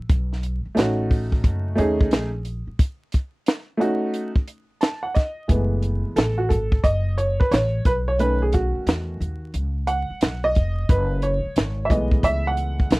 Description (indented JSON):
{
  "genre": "hip hop, jazz-hop",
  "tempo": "89 BPM",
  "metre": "4/4",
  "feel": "swing 65% on 16ths",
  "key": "unclear",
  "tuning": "A4 = 440 Hz",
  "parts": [
    { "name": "upright bass", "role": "bass", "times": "0.1-13.0 s", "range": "E#1 to E2", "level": "-24 LUFS", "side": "equal", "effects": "none" },
    { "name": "compact cocktail drum kit", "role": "drums", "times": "0.1-13.0 s", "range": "hi-hat, kick drum, snare drum", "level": "-19 LUFS", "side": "equal", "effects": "none" },
    { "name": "warm upright piano", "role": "accompaniment", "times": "0.7-13.0 s", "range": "D#3 to A5", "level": "-24 LUFS", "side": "right 1 dB", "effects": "none" }
  ],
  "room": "little or no reverb",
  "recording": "dry, close 1970s-style studio recording, vinyl crackle",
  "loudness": "-20 LUFS",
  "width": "side -22 dB against mid",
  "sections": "0.0-5.5 A section; 5.5-13.0 B section",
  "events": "upright piano fill 4.5-5.5; upright piano solo 5.5-13.0",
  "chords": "0.1 B7 (rootless); 5.5 F#m11; 7.9 B9; 10.9 F#m11",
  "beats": "| 0.10 0.77 1.45 2.12 | 2.79 3.47 4.14 4.82 | 5.49 6.17 6.84 7.51 | 8.19 8.86 9.54 10.21 | 10.88 11.56 12.23 12.91"
}